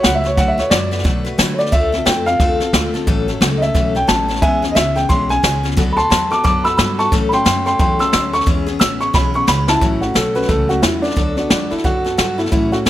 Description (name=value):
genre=rockabilly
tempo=178 BPM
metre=4/4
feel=swing 61% on 8ths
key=unclear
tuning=A4 = 441 Hz
part: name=dark upright piano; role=melody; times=0.0-12.9 s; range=D4 to E6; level=-17 LUFS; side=right 1 dB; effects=none
part: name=picked steel-string acoustic guitar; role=accompaniment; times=0.0-12.9 s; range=A2 to B4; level=-21 LUFS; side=left 4 dB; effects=none
part: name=upright bass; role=bass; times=0.0-12.9 s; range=A1 to D3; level=-23 LUFS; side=right 1 dB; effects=none
part: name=jazz brush drum kit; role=drums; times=0.0-12.9 s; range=hi-hat, kick drum, snare drum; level=-17 LUFS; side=equal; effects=none
room=light reverb, small room reverb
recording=none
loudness=-13 LUFS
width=side -13 dB against mid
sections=0.0-9.8 A section; 9.8-12.9 B section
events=upright piano solo 0.0-9.8; drum fill 9.1-9.8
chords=0.0 D6; 1.7 Dm7; 3.1 A6; 4.4 E6; 5.8 D6; 7.1 A6; 8.5 E6; 9.8 A6; 11.2 D6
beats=0.04 | 0.37 0.71 1.05 1.39 | 1.72 2.06 2.40 2.74 | 3.07 3.41 3.75 4.09 | 4.42 4.76 5.10 5.43 | 5.77 6.11 6.45 6.78 | 7.12 7.46 7.79 8.13 | 8.47 8.80 9.14 9.48 | 9.82 10.15 10.49 10.83 | 11.17 11.51 11.85 12.18 | 12.52 12.86